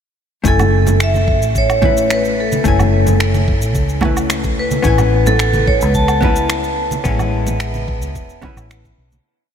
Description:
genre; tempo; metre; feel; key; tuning
sunset chillout; 109 BPM; 4/4; straight; A major; A4 = 440 Hz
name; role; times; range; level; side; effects
vintage hollow-body jazz guitar; accompaniment; 0.4-9.2 s; G#3 to G#5; -20 LUFS; moving between left 7 dB and right 2 dB; auto-pan, ping-pong delay
electronic kick drum; drums; 0.4-9.0 s; none; -19 LUFS; equal; none
vibraphone with hard mallets; melody; 0.5-8.7 s; A4 to A5; -18 LUFS; equal; ping-pong delay
vintage muted fingered electric bass; bass; 0.5-9.2 s; E1 to C#2; -17 LUFS; equal; none
electronic cabasa, woodblock and finger snaps; drums; 0.5-9.2 s; none; -24 LUFS; right 1 dB; none
congas; percussion; 0.6-9.2 s; none; -25 LUFS; right 4 dB; none
room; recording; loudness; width
wet huge ambient reverb, RT60 7.6 s; dreamy mix soaked in reverb; -13 LUFS; side -8 dB against mid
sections
0.4-9.3 groove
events
fade-out 6.3-9.3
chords
0.4 F#m7; 4.9 Amaj9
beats
| 0.45 1.00 1.55 2.10 | 2.65 3.20 3.75 4.30 | 4.85 5.40 5.95 6.50 | 7.05 7.61 8.15 8.71

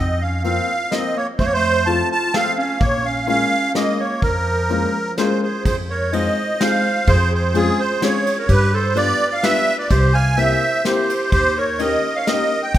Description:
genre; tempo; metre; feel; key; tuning
musette waltz; 127 BPM; 3/4; straight; Bb minor, F minor from 5.7 s; A4 = 439 Hz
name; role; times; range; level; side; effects
musette accordion; melody; 0.0-12.8 s; Ab4 to A5; -19 LUFS; right 2 dB; none
clear clarinet; second line; 0.0-12.7 s; F3 to F5; -24 LUFS; right 2 dB; none
upright bass; bass; 0.0-12.8 s; Bb1 to G2; -20 LUFS; equal; none
clear upright piano; accompaniment; 0.4-12.5 s; F3 to G4; -24 LUFS; left 5 dB; none
soft brush drum kit; drums; 0.4-12.8 s; hi-hat, kick drum, ride cymbal, snare drum; -24 LUFS; equal; none
room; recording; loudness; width
moderate recital hall reverb, RT60 1.7 s; minimal, uncompressed stereo recording; -16 LUFS; side -12 dB against mid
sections
0.0-5.7 A section; 5.7-12.8 B section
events
none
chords
0.0 Fsus4; 1.4 F; 2.8 Bbm7; 5.7 Fm7; 7.1 Dbmaj7/F; 8.5 G7; 9.9 C7; 11.3 Eb7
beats
0.45 0.92 | 1.39 1.86 2.34 | 2.81 3.28 3.75 | 4.23 4.70 5.18 | 5.66 6.13 6.61 | 7.08 7.55 8.03 | 8.50 8.97 9.44 | 9.91 10.38 10.86 | 11.33 11.80 12.28 | 12.75

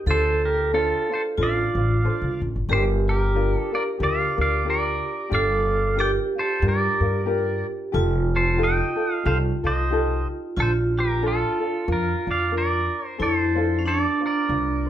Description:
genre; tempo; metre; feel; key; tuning
Hawaiian; 91 BPM; 4/4; swing 58% on 8ths; Bb major; A4 = 439 Hz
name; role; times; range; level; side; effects
vibraphone with hard mallets; second line; 0.0-14.9 s; Db4 to A4; -26 LUFS; right 2 dB; none
ukulele; accompaniment; 0.0-14.9 s; D4 to C5; -29 LUFS; left 3 dB; none
pedal steel guitar; melody; 0.1-14.9 s; F4 to G5; -25 LUFS; right 1 dB; none
upright bass; bass; 0.1-14.9 s; F1 to G2; -24 LUFS; equal; none
room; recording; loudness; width
light reverb; band playing live in one room; -20 LUFS; side -11 dB against mid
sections
0.0-13.2 A section; 13.2-14.9 B section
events
none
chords
0.1 Dm7; 2.7 Gm7; 7.9 F9; 10.6 Bbmaj7; 13.2 F6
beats
| 0.07 0.72 1.38 2.04 | 2.69 3.35 4.01 4.67 | 5.32 5.98 6.63 7.29 | 7.95 8.60 9.26 9.91 | 10.57 11.22 11.88 12.53 | 13.19 13.84 14.50

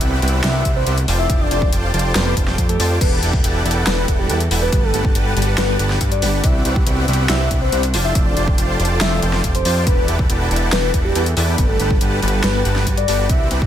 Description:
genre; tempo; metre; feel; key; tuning
future bass; 140 BPM; 4/4; half-time; unclear; A4 = 440 Hz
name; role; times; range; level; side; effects
dark studio string section; sustained chords; 0.0-13.7 s; C3 to B4; -29 LUFS; right 1 dB; sidechain pumping
dense compressed supersaw; riff; 0.0-13.7 s; G3 to A5; -22 LUFS; equal; sidechain pumping
fat analog bass; bass; 0.0-13.7 s; E1 to G2; -19 LUFS; equal; sidechain pumping
dubstep drum kit; drums; 0.0-13.6 s; crash cymbal, hi-hat, snare drum; -23 LUFS; equal; none
soft octave-layered synth lead; melody; 0.4-13.5 s; G4 to E5; -24 LUFS; left 2 dB; chorus, phaser, sidechain pumping, ping-pong delay
electronic kick drum; drums; 0.7-13.7 s; none; -18 LUFS; equal; none
room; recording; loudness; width
little or no reverb; none; -15 LUFS; side -10 dB against mid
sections
0.0-13.7 A section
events
none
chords
0.0 Cmaj9#11; 1.1 F69; 3.0 Em11; 4.7 Gmaj9; 6.4 Cmaj9#11; 7.9 F69; 9.9 Em11; 11.6 Gmaj9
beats
0.01 0.44 0.87 | 1.30 1.73 2.15 2.58 | 3.01 3.44 3.87 4.30 | 4.72 5.15 5.58 6.01 | 6.44 6.87 7.30 7.72 | 8.15 8.58 9.01 9.44 | 9.87 10.30 10.72 11.15 | 11.58 12.01 12.44 12.87 | 13.30

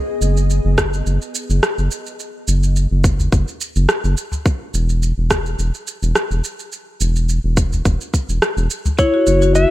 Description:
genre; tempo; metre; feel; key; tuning
organic downtempo; 106 BPM; 4/4; swing 54% on 16ths; unclear; A4 = 440 Hz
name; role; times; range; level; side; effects
round analog bass; bass; 0.2-9.7 s; E1 to F#1; -16 LUFS; equal; sidechain pumping
electronic shaker and rim click; drums; 0.2-9.7 s; none; -22 LUFS; right 1 dB; none
electronic kick drum; drums; 0.8-9.1 s; none; -17 LUFS; equal; none
udu; percussion; 3.2-9.0 s; none; -22 LUFS; left 1 dB; none
electric slide guitar; melody; 9.0-9.7 s; C#5 to E5; -15 LUFS; left 2 dB; none
marimba with medium hard mallets; arpeggios; 9.0-9.6 s; E4 to F#4; -16 LUFS; left 2 dB; none
room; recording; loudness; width
little or no reverb; none; -15 LUFS; side -16 dB against mid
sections
0.0-9.7 A section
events
none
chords
0.0 N.C.; 9.0 F#7(no3)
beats
0.50 1.06 1.63 | 2.19 2.76 3.33 3.89 | 4.46 5.03 5.59 6.16 | 6.72 7.29 7.86 8.42 | 8.99 9.55

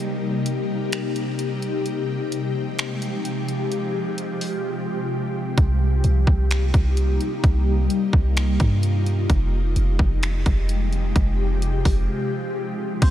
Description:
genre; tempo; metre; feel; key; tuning
hip hop, atmospheric cloud-rap; 129 BPM; 4/4; half-time; F minor; A4 = 440 Hz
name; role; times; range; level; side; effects
ethereal airy pad; sustained chords; 0.0-13.1 s; C3 to G4; -25 LUFS; left 2 dB; ensemble chorus, built-in reverb, phaser, sidechain pumping
trap drum kit; drums; 0.5-13.1 s; crash cymbal, finger snaps, hi-hat, kick drum; -23 LUFS; equal; overdrive
warm 808-style bass; bass; 5.6-13.1 s; F1 to G2; -20 LUFS; equal; none
glassy wavetable pluck; arpeggios; 13.0-13.1 s; C4; -28 LUFS; left 2 dB; chorus
room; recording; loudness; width
light reverb; none; -20 LUFS; side -12 dB against mid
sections
0.0-13.0 A section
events
break 0.0-5.6, 12.1-13.0; drums muted 4.6-5.6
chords
0.0 Cm7; 1.9 Fm9; 5.6 Cm7; 9.3 Fm9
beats
| 0.00 0.46 0.93 1.39 | 1.86 2.32 2.79 3.25 | 3.72 4.18 4.65 5.11 | 5.58 6.04 6.51 6.97 | 7.44 7.90 8.37 8.83 | 9.30 9.76 10.23 10.69 | 11.16 11.62 12.09 12.55 | 13.02

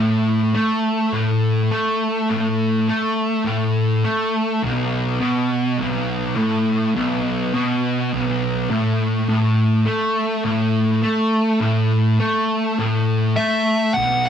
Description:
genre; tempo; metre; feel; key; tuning
metal; 103 BPM; 4/4; straight; unclear; A4 = 440 Hz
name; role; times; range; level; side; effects
thick fuzz guitar; riff; 0.0-14.3 s; B1 to A3; -17 LUFS; equal; distortion
fuzz lead guitar; melody; 13.4-14.3 s; E5 to F#5; -18 LUFS; left 2 dB; distortion
room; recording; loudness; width
wet small room reverb, RT60 0.5 s; band playing live in one room, nothing above 10.9 kHz; -17 LUFS; side -8 dB against mid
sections
0.0-14.0 A section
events
none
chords
0.0 N.C.; 4.6 Asus2/B; 9.3 N.C.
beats
0.56 1.14 1.72 | 2.30 2.88 3.46 4.04 | 4.63 5.21 5.79 6.37 | 6.95 7.54 8.12 8.70 | 9.29 9.87 10.45 11.03 | 11.62 12.20 12.78 13.37 | 13.95

